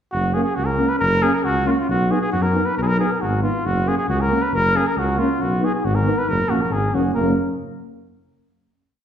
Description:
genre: balkan folk, Balkan brass band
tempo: 137 BPM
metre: 2/4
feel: straight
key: F# major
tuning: A4 = 436 Hz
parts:
  - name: mellow cornet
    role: melody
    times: 0.1-7.3 s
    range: E#4 to B4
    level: -21 LUFS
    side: equal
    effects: none
  - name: mellow tuba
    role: bass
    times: 0.1-7.3 s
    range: F#1 to F#2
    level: -22 LUFS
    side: equal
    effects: none
  - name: mellow euphonium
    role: accompaniment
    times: 0.3-7.3 s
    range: A#3 to B3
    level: -27 LUFS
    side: right 4 dB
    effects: none
  - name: dark euphonium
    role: accompaniment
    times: 0.4-7.3 s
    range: C#4 to D#4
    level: -25 LUFS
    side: left 2 dB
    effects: none
room: wet recital hall reverb, RT60 1.3 s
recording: heard from further back in the room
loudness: -17 LUFS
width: side -9 dB against mid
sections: 0.1-7.1 A section; 7.1-8.0 final chord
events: none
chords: 0.1 F#; 1.9 B; 3.6 F#; 5.4 B; 6.3 F#

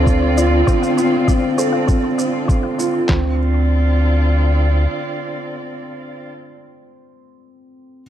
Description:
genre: piano and strings electronica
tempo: 99 BPM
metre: 4/4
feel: straight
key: D minor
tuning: A4 = 437 Hz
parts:
  - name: muted string quartet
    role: sustained chords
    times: 0.0-6.3 s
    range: D3 to D5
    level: -22 LUFS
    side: equal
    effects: none
  - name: felt-muted upright piano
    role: riff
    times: 0.0-8.0 s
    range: C4 to C5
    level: -20 LUFS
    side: right 1 dB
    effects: lush chorus, tape echo
  - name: round analog bass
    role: bass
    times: 0.0-4.9 s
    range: D2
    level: -15 LUFS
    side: equal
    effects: sidechain pumping
  - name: analog pluck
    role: arpeggios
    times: 0.1-3.4 s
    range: C5 to F5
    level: -30 LUFS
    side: left 3 dB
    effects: chorus, sidechain pumping, tape echo
  - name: lo-fi sampler-style drum kit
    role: drums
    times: 0.1-3.2 s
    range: handclaps, kick drum, snare drum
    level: -17 LUFS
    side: equal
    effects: none
  - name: shaker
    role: drums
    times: 0.1-2.9 s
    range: none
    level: -32 LUFS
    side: right 3 dB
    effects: none
room: moderate plate reverb, RT60 2.0 s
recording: dreamy mix soaked in reverb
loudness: -14 LUFS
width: side -11 dB against mid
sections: 0.0-3.1 A section; 3.1-5.5 B section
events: none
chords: 0.0 Dm7

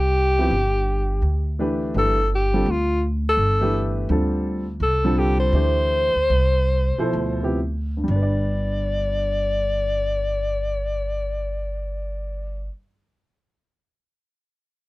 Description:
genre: modal jazz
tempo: 118-168 BPM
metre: 4/4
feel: swing 64% on 8ths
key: G mixolydian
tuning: A4 = 440 Hz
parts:
  - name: breathy alto saxophone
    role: melody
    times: 0.0-12.7 s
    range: F4 to D5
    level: -23 LUFS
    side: left 1 dB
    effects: none
  - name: upright bass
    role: bass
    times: 0.0-12.7 s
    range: G1 to D2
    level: -23 LUFS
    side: equal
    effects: none
  - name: warm baby grand piano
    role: accompaniment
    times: 0.4-12.9 s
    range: G2 to D5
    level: -24 LUFS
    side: equal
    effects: none
room: little or no reverb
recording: dry, close 1970s-style studio recording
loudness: -19 LUFS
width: side -19 dB against mid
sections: 0.0-1.9 A section; 1.9-8.1 B section; 8.1-12.2 C section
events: slowing down 4.8-8.1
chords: 0.0 Gsus4; 1.9 G13sus4; 8.1 G

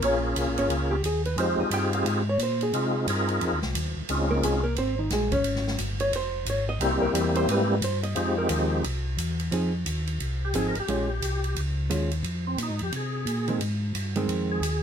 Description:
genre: soul jazz organ trio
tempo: 177 BPM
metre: 4/4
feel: swing 62% on 8ths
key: F minor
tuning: A4 = 441 Hz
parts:
  - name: percussive tonewheel organ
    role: melody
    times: 0.0-4.6, 6.8-14.8 s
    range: F3 to Bb4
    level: -27 LUFS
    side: left 1 dB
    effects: slow rotary speaker, overdrive, chorus vibrato
  - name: hollow-body jazz guitar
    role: accompaniment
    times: 0.0-14.6 s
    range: Eb3 to G5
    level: -28 LUFS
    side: right 1 dB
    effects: none
  - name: mellow tonewheel organ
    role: bass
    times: 0.0-14.8 s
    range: F1 to C3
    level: -28 LUFS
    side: equal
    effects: slow rotary speaker
  - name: swinging big-band drum kit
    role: drums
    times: 0.0-14.7 s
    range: hi-hat, kick drum, ride cymbal, snare drum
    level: -34 LUFS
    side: right 2 dB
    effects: none
room: light reverb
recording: minimal, uncompressed stereo recording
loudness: -24 LUFS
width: side -8 dB against mid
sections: 0.0-9.5 A section; 9.5-14.8 A section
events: hollow-body jazz guitar solo 0.0-9.5; tonewheel organ solo 9.5-14.8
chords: 0.0 Bbm7; 1.4 Fm7; 4.1 Dbmaj7; 6.8 C7; 8.2 Fm7; 8.8 C; 9.5 Fm7; 10.9 Bbm7; 12.2 Fm7

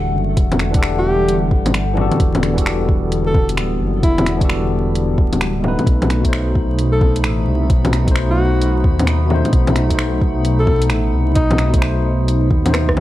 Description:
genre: future garage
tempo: 131 BPM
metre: 4/4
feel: swing 64% on 16ths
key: E minor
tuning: A4 = 442 Hz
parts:
  - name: tine electric piano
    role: accompaniment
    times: 0.0-13.0 s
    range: B2 to F#5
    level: -22 LUFS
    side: left 2 dB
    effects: medium stereo tremolo, sidechain pumping, tape echo
  - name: warbly tape-like pad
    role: sustained chords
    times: 0.0-13.0 s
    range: D3 to F#5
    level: -25 LUFS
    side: right 1 dB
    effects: chorus, built-in reverb, vintage 12-bit sampler grit, sidechain pumping
  - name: dark detuned saw bass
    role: bass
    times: 0.0-13.0 s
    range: D1 to D#2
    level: -18 LUFS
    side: equal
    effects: sidechain pumping
  - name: electronic kick drum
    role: drums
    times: 0.4-12.9 s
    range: none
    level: -16 LUFS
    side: equal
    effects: none
  - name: garage drum kit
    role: drums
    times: 0.4-13.0 s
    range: bongos, finger snaps, hi-hat, rim click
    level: -21 LUFS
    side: left 1 dB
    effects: overdrive
  - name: breathy alto saxophone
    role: melody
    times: 1.0-11.7 s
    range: D#4 to A4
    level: -23 LUFS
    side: equal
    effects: tape echo
  - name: drifting glass-harmonics texture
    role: texture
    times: 6.4-13.0 s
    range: B3 to B5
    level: -31 LUFS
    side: left 2 dB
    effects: chorus, built-in reverb
room: light reverb, digital ambience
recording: vinyl crackle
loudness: -14 LUFS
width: side -15 dB against mid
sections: 0.0-13.0 A section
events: drum fill 12.7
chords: 0.0 Em11; 5.9 B7b9

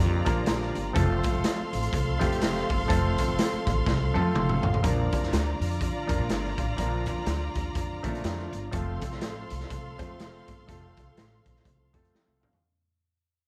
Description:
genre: uptempo 1960s-style soul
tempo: 123 BPM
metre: 4/4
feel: swing 58% on 8ths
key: Bb major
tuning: A4 = 440 Hz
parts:
  - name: clear studio string section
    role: second line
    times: 0.0-12.6 s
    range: F4 to C6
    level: -37 LUFS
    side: equal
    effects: none
  - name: mellow tonewheel organ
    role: sustained chords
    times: 0.0-12.6 s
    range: D3 to A4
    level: -39 LUFS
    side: equal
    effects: slow rotary speaker, overdrive, chorus vibrato
  - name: upright bass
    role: bass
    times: 0.0-12.6 s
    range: F1 to Bb2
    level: -32 LUFS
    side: equal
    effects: none
  - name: warm grand piano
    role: accompaniment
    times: 0.3-12.6 s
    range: F3 to C6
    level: -34 LUFS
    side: equal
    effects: none
  - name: raw garage drum kit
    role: drums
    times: 0.3-12.6 s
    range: hi-hat, kick drum, snare drum, toms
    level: -32 LUFS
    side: equal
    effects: none
room: light reverb, small room ambience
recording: none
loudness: -27 LUFS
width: mono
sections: 0.0-4.8 A section; 4.8-12.6 B section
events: drum fill 3.9-4.8, 12.1-12.6; grand piano fill 4.1-4.8, 11.9-12.6; fade-out 4.8-12.6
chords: 0.0 Bb; 1.0 F; 4.8 Bb; 8.7 F

